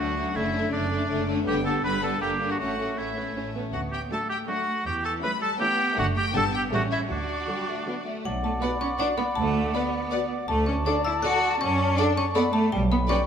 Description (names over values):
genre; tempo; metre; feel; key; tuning
cinematic, playful, whimsical film cue; 161 BPM; 3/4; straight; D major, B minor from 8.2 s; A4 = 440 Hz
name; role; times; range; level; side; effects
rich studio violin section; melody; 0.0-13.2 s; D5 to B5; -34 LUFS; left 5 dB; none
clear oboe; second line; 0.0-13.2 s; D4 to D5; -30 LUFS; right 1 dB; none
rich studio violin section; second line; 0.0-13.2 s; G3 to D5; -34 LUFS; left 4 dB; none
rich studio viola section; accompaniment; 0.0-13.2 s; C#3 to B4; -33 LUFS; right 2 dB; none
clear studio cello section; bass; 0.0-13.2 s; E3 to F#4; -29 LUFS; right 1 dB; none
rich studio double bass section; bass; 0.0-13.0 s; F#1 to F#2; -30 LUFS; right 2 dB; none
xylophone with plastic mallets; melody; 8.3-13.3 s; F#5 to F#6; -30 LUFS; left 3 dB; none
concert flute; second line; 8.3-13.2 s; F#5 to A5; -32 LUFS; left 2 dB; none
mellow French horn section; sustained chords; 8.6-13.2 s; F#4 to D5; -32 LUFS; left 4 dB; none
room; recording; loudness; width
moderate scoring stage reverb, RT60 1.7 s; none; -23 LUFS; side -8 dB against mid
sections
0.0-8.2 A section; 8.2-13.3 B section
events
none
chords
0.4 D/F#; 1.5 G; 2.2 Gm; 2.6 A; 3.7 D; 4.9 A7/E; 6.0 D/F#; 6.3 G; 6.7 A7; 7.1 D; 8.2 Bm; 9.4 Bm/D; 10.5 D; 11.6 D/F#; 12.7 G/B